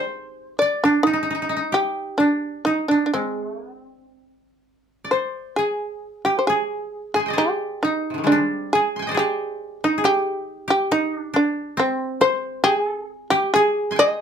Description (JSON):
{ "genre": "japanese traditional, Japanese chamber music", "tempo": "59-70 BPM", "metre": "4/4", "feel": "rubato", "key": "C hirajoshi", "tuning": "A4 = 442 Hz", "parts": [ { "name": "shamisen", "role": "melody", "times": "0.0-14.2 s", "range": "C4 to Eb5", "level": "-20 LUFS", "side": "equal", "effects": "none" }, { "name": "koto", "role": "second line", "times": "0.0-14.2 s", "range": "C3 to C6", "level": "-24 LUFS", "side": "equal", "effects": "none" } ], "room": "moderate studio reverb, RT60 0.6 s", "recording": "minimal, uncompressed stereo recording", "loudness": "-19 LUFS", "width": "side -8 dB against mid", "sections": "0.0-5.6 A section; 5.6-14.2 B section", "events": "none", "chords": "none" }